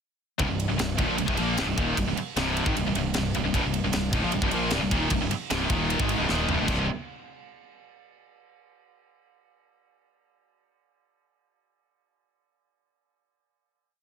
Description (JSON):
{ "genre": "heavy metal", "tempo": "153 BPM", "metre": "4/4", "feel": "straight", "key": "C minor", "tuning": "A4 = 440 Hz", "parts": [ { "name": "heavy high-gain guitar", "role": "riff", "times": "0.4-6.8 s", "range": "C2 to Bb3", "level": "-29 LUFS", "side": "right 10 dB", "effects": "distortion" }, { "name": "sludgy distorted guitar", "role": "riff", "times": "0.4-6.9 s", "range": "C2 to Bb3", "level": "-32 LUFS", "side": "equal", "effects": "overdrive" }, { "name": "tight distorted guitar", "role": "riff", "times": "0.4-6.9 s", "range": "C2 to Bb3", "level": "-30 LUFS", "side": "left 12 dB", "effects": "distortion" }, { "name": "fuzz fingered electric bass", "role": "bass", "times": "0.4-6.9 s", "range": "C1 to Bb1", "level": "-31 LUFS", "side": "equal", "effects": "overdrive" }, { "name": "tight metal drum kit", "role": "drums", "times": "0.4-6.8 s", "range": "crash cymbal, kick drum, ride cymbal, snare drum, toms", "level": "-30 LUFS", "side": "equal", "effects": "none" } ], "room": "little or no reverb", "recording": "dense, heavily limited modern master", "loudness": "-23 LUFS", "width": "side -7 dB against mid", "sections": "0.4-6.7 riff; 6.7-8.3 final chord", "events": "drum fill 6.3-6.7", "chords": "0.4 Cm; 6.7 C5" }